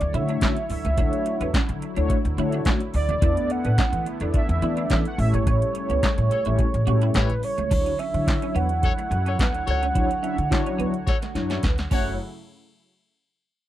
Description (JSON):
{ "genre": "early-eighties boogie funk", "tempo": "107 BPM", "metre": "4/4", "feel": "straight", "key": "unclear", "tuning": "A4 = 440 Hz", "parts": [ { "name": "warm velvety synth lead", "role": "melody", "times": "0.0-12.2 s", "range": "B4 to F#5", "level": "-28 LUFS", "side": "right 3 dB", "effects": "chorus, slapback echo" }, { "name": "warm analog pad", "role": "sustained chords", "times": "0.0-12.2 s", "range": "C#3 to C#5", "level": "-35 LUFS", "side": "equal", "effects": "chorus" }, { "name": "upright bass", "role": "bass", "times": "0.0-12.2 s", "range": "F#1 to E3", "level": "-25 LUFS", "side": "equal", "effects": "none" }, { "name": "electro analog drum machine", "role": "drums", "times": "0.0-12.1 s", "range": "crash cymbal, handclaps, hi-hat, kick drum, snare drum", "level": "-24 LUFS", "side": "equal", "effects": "none" }, { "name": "mellow synth brass", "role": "accompaniment", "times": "0.1-12.2 s", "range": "F#3 to E5", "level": "-28 LUFS", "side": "left 3 dB", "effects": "chorus" }, { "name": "semi-hollow electric guitar", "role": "riff", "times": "0.1-12.1 s", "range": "A3 to F#4", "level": "-34 LUFS", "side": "right 7 dB", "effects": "ensemble chorus" }, { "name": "warm horn section", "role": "second line", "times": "6.3-12.1 s", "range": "A3 to C#5", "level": "-29 LUFS", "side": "left 8 dB", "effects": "none" } ], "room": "little or no reverb", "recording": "dry, close 1970s-style studio recording", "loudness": "-20 LUFS", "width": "side -13 dB against mid", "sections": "0.0-7.7 A section; 7.7-12.2 B section; 12.2-13.7 C section", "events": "band accent 5.5-7.7; drum fill 11.1-12.2", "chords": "0.0 Dmaj9; 3.2 E7sus4; 5.2 A7; 7.7 Dmaj9; 11.9 F#m7; 12.2 N.C." }